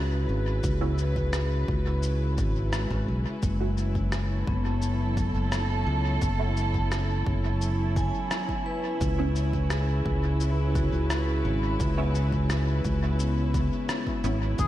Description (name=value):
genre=ambient dub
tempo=86 BPM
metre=4/4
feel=straight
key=unclear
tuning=A4 = 440 Hz
part: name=dark studio string section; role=sustained chords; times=0.0-14.7 s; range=C#3 to B4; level=-32 LUFS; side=right 1 dB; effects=none
part: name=vibraphone with medium hard mallets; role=arpeggios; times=0.0-14.7 s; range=G#3 to G#5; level=-34 LUFS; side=left 2 dB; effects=dub echo
part: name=modern bright fingered electric bass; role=bass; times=0.0-14.7 s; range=F#1 to C#2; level=-26 LUFS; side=equal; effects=none
part: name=electronic cabasa and rim click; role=drums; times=0.6-14.7 s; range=none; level=-36 LUFS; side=left 1 dB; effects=dub echo
part: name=electronic kick drum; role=drums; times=0.6-14.7 s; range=none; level=-32 LUFS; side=equal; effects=overdrive
part: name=filtered dub chord stab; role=stabs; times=0.8-14.4 s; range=A3 to F#4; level=-37 LUFS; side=right 3 dB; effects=phaser, ensemble chorus, dub echo
part: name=melodica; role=melody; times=14.6-14.7 s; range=G#4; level=-26 LUFS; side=left 6 dB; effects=none
room=moderate lush hall reverb, RT60 1.8 s, small room ambience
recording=dreamy mix soaked in reverb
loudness=-24 LUFS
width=side -14 dB against mid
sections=0.0-14.6 A section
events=none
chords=0.0 C#m7; 3.4 F#m7; 9.0 C#m7